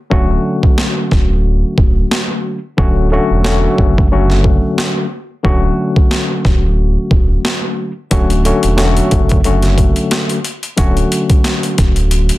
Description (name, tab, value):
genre	hip hop, boom-bap hip-hop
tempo	90 BPM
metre	4/4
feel	swing 56% on 16ths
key	D major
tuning	A4 = 443 Hz
part	tine electric piano	accompaniment	0.1-12.4 s	D3 to F#4	-16 LUFS	left 2 dB	medium stereo tremolo, cassette tape, high-pass filter, low-pass filter
part	sub bass with octave	bass	0.1-12.3 s	D1 to F#1	-14 LUFS	equal	none
part	boom bap sampler-style drum kit	drums	0.1-12.4 s	hi-hat, kick drum, snare drum	-14 LUFS	equal	overdrive
room	little or no reverb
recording	dense, heavily limited modern master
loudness	-11 LUFS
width	side -17 dB against mid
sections	0.0-12.4 A section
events	break 0.0-8.1; hi-hats muted 5.4-8.1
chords	0.0 Dmaj7